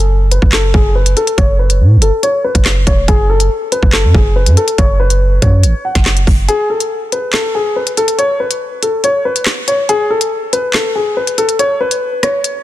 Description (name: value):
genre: hip hop, drill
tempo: 141 BPM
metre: 4/4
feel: half-time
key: F# minor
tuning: A4 = 445 Hz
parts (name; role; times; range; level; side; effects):
- dark concert grand piano; melody; 0.0-12.6 s; G#4 to F#5; -15 LUFS; left 2 dB; low-pass filter, tape echo
- long sustained 808-style bass; bass; 0.0-6.5 s; E1 to A2; -11 LUFS; equal; none
- drill drum kit; drums; 0.0-12.5 s; handclaps, hi-hat, kick drum, rim click, snare drum; -14 LUFS; equal; none
room: little or no reverb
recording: dense, heavily limited modern master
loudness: -10 LUFS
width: side -14 dB against mid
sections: 0.0-12.6 A section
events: filter sweep on grand piano 0.0-6.5; break 6.5-12.6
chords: 0.0 F#m; 6.5 N.C.